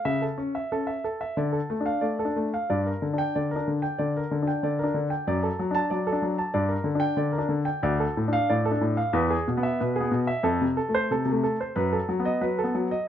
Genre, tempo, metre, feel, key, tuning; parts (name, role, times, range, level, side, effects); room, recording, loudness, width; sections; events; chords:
classical, baroque-style suite movement for grand piano; 92 BPM; 4/4; rubato; A4 = 440 Hz
clear baby grand piano; solo; 0.0-13.1 s; D2 to A5; -24 LUFS; equal
light reverb; nothing above 7.8 kHz; -24 LUFS; side -10 dB against mid
0.0-13.1 A section
0.0 A/C#; 1.4 Dm; 2.7 Gm; 5.3 D/F#; 6.5 Gm; 7.8 Dm; 9.2 E; 10.5 F; 11.8 B7/F#